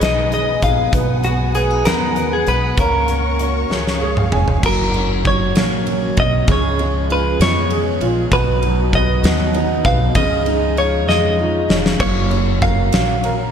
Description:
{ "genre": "six-eight pop ballad", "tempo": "65 BPM (dotted quarters)", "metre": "6/8", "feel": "straight", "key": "F# major", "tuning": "A4 = 441 Hz", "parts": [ { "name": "direct-recorded clean electric guitar", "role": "melody", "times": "0.0-13.5 s", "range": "F#4 to E#5", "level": "-20 LUFS", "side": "equal", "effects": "lush chorus, digital delay" }, { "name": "warm baby grand piano", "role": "accompaniment", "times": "0.0-13.5 s", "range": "B2 to G#5", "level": "-22 LUFS", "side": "right 2 dB", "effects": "ensemble chorus" }, { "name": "warm studio string section", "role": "sustained chords", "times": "0.0-4.6 s", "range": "B3 to D#6", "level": "-27 LUFS", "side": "left 2 dB", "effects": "none" }, { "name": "picked steel-string acoustic guitar", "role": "arpeggios", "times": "0.0-13.5 s", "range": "D#3 to G#4", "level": "-26 LUFS", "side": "equal", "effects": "wide subtle chorus" }, { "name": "upright bass", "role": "bass", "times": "0.0-13.5 s", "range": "E#1 to E#2", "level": "-20 LUFS", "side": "equal", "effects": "none" }, { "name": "huge arena drum kit", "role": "drums", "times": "0.0-13.4 s", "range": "crash cymbal, hi-hat, kick drum, ride cymbal, snare drum, toms", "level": "-20 LUFS", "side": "equal", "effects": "gated reverb" } ], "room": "moderate plate reverb, RT60 2.5 s", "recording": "bright 1980s-style digital production", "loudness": "-14 LUFS", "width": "side -8 dB against mid", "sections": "0.0-4.6 A section; 4.6-13.5 B section", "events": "drum fill 3.7-4.6, 11.1-12.0; grand piano fill 3.7-4.6", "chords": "0.0 G#m; 0.9 B6; 2.8 F#/C#; 3.7 C#; 4.6 F#6; 6.5 C#7; 8.3 B; 10.2 C#add9; 12.0 F#", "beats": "0.01 | 0.93 1.86 | 2.78 3.71 | 4.63 5.56 | 6.48 7.40 | 8.31 9.23 | 10.15 11.07 | 12.00 12.93" }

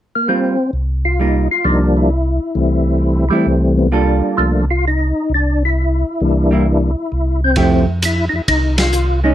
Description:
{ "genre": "soul jazz organ trio", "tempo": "132 BPM", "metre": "4/4", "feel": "swing 66% on 8ths", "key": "unclear", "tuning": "A4 = 440 Hz", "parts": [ { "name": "percussive tonewheel organ", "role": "melody", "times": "0.2-9.3 s", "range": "E3 to F4", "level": "-16 LUFS", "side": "left 2 dB", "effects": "slow rotary speaker, chorus vibrato" }, { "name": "vintage hollow-body jazz guitar", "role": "accompaniment", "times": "0.3-9.3 s", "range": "F3 to A4", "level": "-17 LUFS", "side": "right 4 dB", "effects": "none" }, { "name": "mellow tonewheel organ", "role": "bass", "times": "0.7-9.3 s", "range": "C2 to F2", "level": "-16 LUFS", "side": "equal", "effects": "overdrive, chorus vibrato, slow rotary speaker" }, { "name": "vintage drum kit", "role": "drums", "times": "7.6-9.1 s", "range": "hi-hat, kick drum, ride cymbal, snare drum", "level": "-21 LUFS", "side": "right 1 dB", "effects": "none" } ], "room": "little or no reverb", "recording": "close, detailed microphones", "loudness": "-13 LUFS", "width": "side -12 dB against mid", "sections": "0.3-7.6 A section; 7.6-9.3 B section", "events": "band accent 8.7", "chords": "0.3 C7sus4; 2.1 C6; 3.9 Gm9; 5.7 C7; 7.6 Fmaj9", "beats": "| 0.28 0.73 1.19 1.65 | 2.10 2.56 3.01 3.47 | 3.92 4.38 4.84 5.29 | 5.75 6.20 6.66 7.12 | 7.57 8.03 8.48 8.94" }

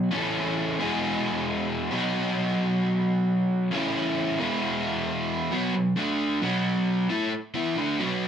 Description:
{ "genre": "rock", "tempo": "133 BPM", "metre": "4/4", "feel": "straight", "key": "B mixolydian", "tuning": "A4 = 439 Hz", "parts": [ { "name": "overdriven semi-hollow guitar", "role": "solo", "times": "0.0-8.3 s", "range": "E2 to A4", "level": "-24 LUFS", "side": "equal", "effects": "none" } ], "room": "moderate studio reverb, RT60 0.8 s", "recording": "band playing live in one room", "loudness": "-24 LUFS", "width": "side -8 dB against mid", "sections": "0.0-5.5 A section; 5.5-8.3 B section", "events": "none", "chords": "0.1 A/C#; 0.8 E; 1.9 B; 3.7 A/C#; 4.4 E; 5.5 B5; 6.0 D5; 6.4 B5", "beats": "| 0.11 0.56 1.01 1.46 | 1.91 2.36 2.81 3.26 | 3.71 4.17 4.62 5.07 | 5.51 5.97 6.42 6.87 | 7.32 7.77 8.22" }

